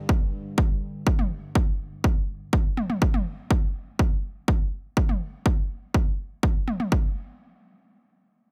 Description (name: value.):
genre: melodic techno.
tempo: 123 BPM.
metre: 4/4.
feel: straight.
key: unclear.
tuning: A4 = 444 Hz.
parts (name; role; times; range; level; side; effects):
analog drone; drone; 0.0-3.1 s; G2 to D3; -44 LUFS; equal; chorus, sidechain pumping.
electronic kick drum; drums; 0.1-7.0 s; none; -25 LUFS; equal; overdrive.
electronic toms; drums; 1.2-6.9 s; none; -33 LUFS; equal; overdrive.
room: digital ambience.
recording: none.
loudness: -26 LUFS.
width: mono.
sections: 0.0-6.9 A section; 6.9-8.5 B section.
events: none.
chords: 0.0 G5; 3.0 N.C..